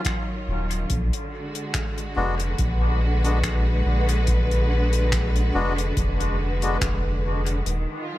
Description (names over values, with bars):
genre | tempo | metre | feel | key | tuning
ambient dub | 71 BPM | 4/4 | swing 55% on 16ths | unclear | A4 = 440 Hz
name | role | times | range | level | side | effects
rich studio string section | sustained chords | 0.0-8.2 s | D3 to Db5 | -28 LUFS | equal | none
damped 70s drum kit | drums | 0.0-7.8 s | finger snaps, hi-hat | -33 LUFS | left 2 dB | dub echo
electronic kick drum | drums | 0.1-7.0 s | none | -29 LUFS | equal | none
soft dub sub bass | bass | 0.5-7.9 s | Eb1 to Bb1 | -22 LUFS | equal | tube saturation
melodica | stabs | 2.2-6.8 s | Ab3 to Gb4 | -31 LUFS | left 3 dB | dub echo
room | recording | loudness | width
studio reverb | none | -21 LUFS | side -15 dB against mid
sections
0.0-7.7 A section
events
none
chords
0.0 Ebm9; 0.9 Bb7b9b13; 7.7 Ebmadd9